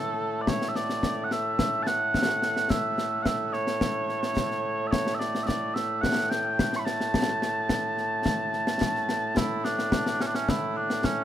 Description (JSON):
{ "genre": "scottish traditional, Scottish pipe music", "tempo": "108 BPM", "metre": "4/4", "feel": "straight", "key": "A major", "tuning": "A4 = 441 Hz", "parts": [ { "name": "mellow small bagpipes", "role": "melody", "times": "0.0-11.2 s", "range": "A2 to C#6", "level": "-26 LUFS", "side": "right 1 dB", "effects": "none" }, { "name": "concert snare drum and concert bass drum", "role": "drums", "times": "0.5-11.2 s", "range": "none", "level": "-29 LUFS", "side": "left 1 dB", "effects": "none" } ], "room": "light reverb", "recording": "minimal, uncompressed stereo recording", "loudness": "-24 LUFS", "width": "side -11 dB against mid", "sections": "0.5-9.4 A section; 9.4-11.2 B section", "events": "none", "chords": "none", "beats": "| 0.48 1.03 1.59 2.14 | 2.70 3.25 3.81 4.37 | 4.92 5.48 6.03 6.59 | 7.14 7.70 8.26 8.81 | 9.37 9.92 10.48 11.03" }